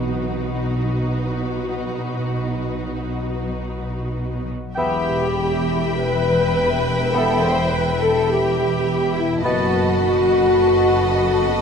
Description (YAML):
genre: classical, slow romantic movement for symphony orchestra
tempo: 44-56 BPM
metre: 4/4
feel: rubato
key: E minor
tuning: A4 = 440 Hz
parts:
  - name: dark symphonic violin section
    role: melody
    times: 0.0-11.6 s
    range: B4 to B5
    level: -32 LUFS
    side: left 2 dB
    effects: none
  - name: rich studio violin section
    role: second line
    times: 0.0-11.6 s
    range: F#4 to A5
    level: -28 LUFS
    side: left 1 dB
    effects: none
  - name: rich symphonic viola section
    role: accompaniment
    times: 0.0-11.6 s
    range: D#4 to C5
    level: -27 LUFS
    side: right 2 dB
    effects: none
  - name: concert harp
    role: arpeggios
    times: 0.0-11.6 s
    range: E2 to E5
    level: -27 LUFS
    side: left 5 dB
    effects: none
  - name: clear symphonic double bass section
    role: bass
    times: 0.0-11.6 s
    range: E1 to B1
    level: -27 LUFS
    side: right 2 dB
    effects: none
  - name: warm symphonic cello section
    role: bass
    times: 0.0-11.6 s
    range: E2 to B2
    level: -28 LUFS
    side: right 2 dB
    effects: none
  - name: clear oboe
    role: second line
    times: 4.8-9.9 s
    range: G5 to A5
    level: -31 LUFS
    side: right 3 dB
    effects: none
  - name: hollow concert flute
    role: second line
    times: 4.8-10.0 s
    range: B5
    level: -30 LUFS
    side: left 3 dB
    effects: none
  - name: warm clarinet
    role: second line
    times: 4.8-9.9 s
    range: D#5 to E5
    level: -29 LUFS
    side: equal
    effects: none
  - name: clear bassoon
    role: accompaniment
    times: 4.8-9.9 s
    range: B3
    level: -27 LUFS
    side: left 1 dB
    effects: none
  - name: mellow French horn section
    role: sustained chords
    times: 4.8-11.6 s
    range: E4 to C5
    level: -20 LUFS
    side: left 2 dB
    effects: none
room: wet recital hall reverb, RT60 1.5 s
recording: dark, warm production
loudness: -18 LUFS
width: side -6 dB against mid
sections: 0.0-4.8 A section; 4.8-11.6 B section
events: none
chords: 0.0 B; 4.8 Em; 9.4 B7/F#